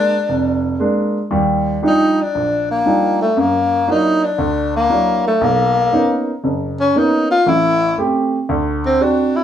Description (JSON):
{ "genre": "jazz", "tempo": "117 BPM", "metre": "4/4", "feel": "swing 69% on 8ths", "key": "unclear", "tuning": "A4 = 443 Hz", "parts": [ { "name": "breathy tenor saxophone", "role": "melody", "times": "0.0-9.4 s", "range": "A3 to F4", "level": "-15 LUFS", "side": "left 2 dB", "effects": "none" }, { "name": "warm baby grand piano", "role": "accompaniment", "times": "0.0-9.4 s", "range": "F1 to G4", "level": "-17 LUFS", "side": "right 1 dB", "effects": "none" } ], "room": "wet studio reverb, RT60 0.6 s", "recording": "band playing live in one room", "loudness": "-14 LUFS", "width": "side -9 dB against mid", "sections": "0.0-1.3 A section; 1.3-9.4 B section", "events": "tenor saxophone solo 1.3-9.4", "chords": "0.0 Bb7; 1.3 Ebmaj9; 3.4 Gbaug7; 5.4 Bmaj9; 7.5 Am7; 8.5 D7" }